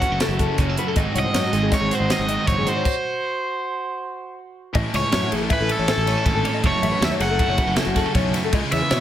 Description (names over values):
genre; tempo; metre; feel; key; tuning
math rock and midwest emo; 159 BPM; 5/4; straight; unclear; A4 = 440 Hz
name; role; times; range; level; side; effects
cranked stack guitar; melody; 0.0-9.0 s; A4 to F#5; -24 LUFS; right 1 dB; overdrive
clean electric guitar; accompaniment; 0.0-9.0 s; F#2 to A4; -27 LUFS; right 5 dB; none
mellow electric guitar; arpeggios; 0.0-9.0 s; F#4 to E5; -27 LUFS; left 8 dB; none
cranked stack guitar; riff; 0.0-9.0 s; G#2 to G#4; -28 LUFS; left 1 dB; overdrive
crisp fusion drum kit; drums; 0.0-9.0 s; crash cymbal, hi-hat, kick drum, ride cymbal, snare drum; -24 LUFS; equal; none
fuzz fingered electric bass; bass; 0.1-9.0 s; F#1 to B2; -26 LUFS; equal; overdrive
room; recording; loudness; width
light reverb; none; -18 LUFS; side -11 dB against mid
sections
0.0-4.7 A section; 4.7-9.0 B section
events
stop 2.9-4.7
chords
0.0 F#m7; 1.0 G#7; 4.7 Amaj7; 6.6 F#m7